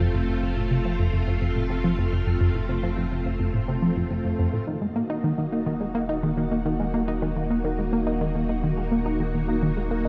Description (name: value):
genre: ambient, sequencer-driven space music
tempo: 106 BPM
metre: 4/4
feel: straight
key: unclear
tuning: A4 = 440 Hz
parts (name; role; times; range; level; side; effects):
- string machine, full ensemble; sustained chords; 0.0-10.1 s; A3 to Gb4; -31 LUFS; equal; ensemble chorus, shimmer reverb
- tight sequenced synth; riff; 0.0-10.1 s; F2 to Eb4; -27 LUFS; equal; chorus, tape echo
- round analog bass; bass; 0.0-10.1 s; Eb1 to F1; -33 LUFS; equal; none
room: moderate plate reverb, RT60 2.7 s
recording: dark, warm production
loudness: -25 LUFS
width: mono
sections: 0.0-10.1 A section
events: filter sweep on synth arpeggio sound 0.0-10.1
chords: 0.0 F; 4.7 Ebm